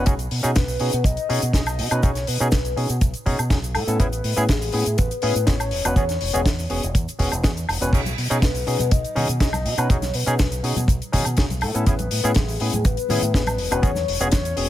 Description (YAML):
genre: nu-disco, nu disco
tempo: 122 BPM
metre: 4/4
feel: straight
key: B mixolydian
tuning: A4 = 441 Hz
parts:
  - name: barky tine electric piano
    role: accompaniment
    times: 0.0-14.7 s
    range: B3 to B4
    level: -26 LUFS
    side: equal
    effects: sidechain pumping
  - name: fingered electric bass with an envelope filter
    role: bass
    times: 0.0-14.7 s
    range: E1 to B2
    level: -25 LUFS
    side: equal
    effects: none
  - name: deep reggae drum kit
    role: drums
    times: 0.1-14.7 s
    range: crash cymbal, hi-hat, shaker, snare drum, woodblock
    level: -26 LUFS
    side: left 1 dB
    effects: none
  - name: kick drum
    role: drums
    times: 0.1-14.4 s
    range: none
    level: -20 LUFS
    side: equal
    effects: none
  - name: soft octave-layered synth lead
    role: melody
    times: 0.6-14.7 s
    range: G#4 to D#5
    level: -28 LUFS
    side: left 3 dB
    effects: chorus, phaser, ping-pong delay
  - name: congas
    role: percussion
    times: 8.1-14.4 s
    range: none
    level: -34 LUFS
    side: left 3 dB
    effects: none
room: little or no reverb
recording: none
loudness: -19 LUFS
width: side -13 dB against mid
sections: 0.0-14.7 A section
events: none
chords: 0.1 B69; 3.8 Amaj9; 5.7 E69; 7.9 B69; 11.6 Amaj9; 13.6 E69